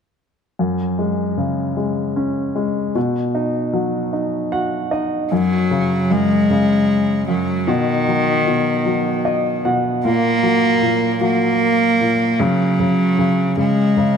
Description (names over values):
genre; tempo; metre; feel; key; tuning
pop; 51 BPM (dotted quarters); 6/8; straight; F# major; A4 = 436 Hz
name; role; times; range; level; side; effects
clear baby grand piano; accompaniment; 0.6-14.2 s; F#2 to F#5; -19 LUFS; left 1 dB; none
clear cello; melody; 5.3-14.2 s; D#3 to A#3; -16 LUFS; equal; ping-pong delay
room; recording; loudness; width
moderate scoring stage reverb, RT60 1.6 s; none; -16 LUFS; side -7 dB against mid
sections
0.6-5.3 A section; 5.3-14.2 B section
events
grand piano fill 4.1-5.3, 8.9-10.0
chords
0.6 F#sus2; 3.0 B; 5.3 F#sus2; 7.7 B; 10.0 F#/A#; 12.4 N.C.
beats
| 0.60 1.78 | 2.96 4.14 | 5.32 6.50 | 7.68 8.86 | 10.04 11.22 | 12.40 13.58